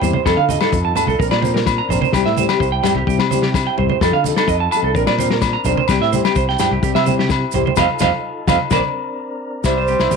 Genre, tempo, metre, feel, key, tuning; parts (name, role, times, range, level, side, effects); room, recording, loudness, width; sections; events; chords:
highlife guitar band; 128 BPM; 4/4; straight; C mixolydian; A4 = 440 Hz
nylon-string guitar; accompaniment; 0.0-10.2 s; F3 to Bb4; -23 LUFS; left 14 dB
mellow tonewheel organ; sustained chords; 0.0-9.7 s; C4 to Bb4; -28 LUFS; equal; slow rotary speaker
semi-hollow electric guitar; arpeggios; 0.0-10.2 s; E4 to Bb5; -20 LUFS; right 15 dB; slapback echo
fingered electric bass; bass; 0.0-10.2 s; Bb1 to D3; -22 LUFS; equal
congas; percussion; 0.0-10.2 s; -24 LUFS; right 7 dB
maracas; percussion; 0.0-10.2 s; -32 LUFS; right 20 dB
vintage drum kit; drums; 0.3-10.2 s; kick drum, snare drum; -21 LUFS; left 5 dB
agogo bells; percussion; 0.3-10.1 s; -23 LUFS; left 15 dB
mellow hollow wooden flute; melody; 9.6-10.2 s; C5; -18 LUFS; right 2 dB; slapback echo
raspy tenor saxophone; second line; 9.7-10.2 s; G3; -27 LUFS; right 12 dB
light reverb, small room ambience; 1960s-style stereo with parts hard left and right; -14 LUFS; side -5 dB against mid
0.0-9.7 A section
band accent 7.8-9.7
0.3 F7; 1.2 Bbadd9; 2.1 C; 4.0 F7; 5.0 Bbadd9; 5.9 C; 7.8 F7; 8.7 Bbadd9; 9.7 C